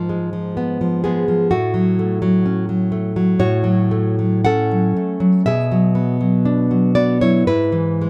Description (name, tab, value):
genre	romantic piece for solo classical guitar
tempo	53-64 BPM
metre	4/4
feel	rubato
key	unclear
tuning	A4 = 440 Hz
part	nylon-string guitar	solo	0.0-8.1 s	Ab2 to F#5	-18 LUFS	equal	none
room	little or no reverb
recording	close, detailed microphones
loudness	-17 LUFS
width	mono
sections	0.0-8.1 A section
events	none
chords	0.0 Fdim/Ab; 1.5 F#m/A; 5.5 Bm; 7.5 E/G#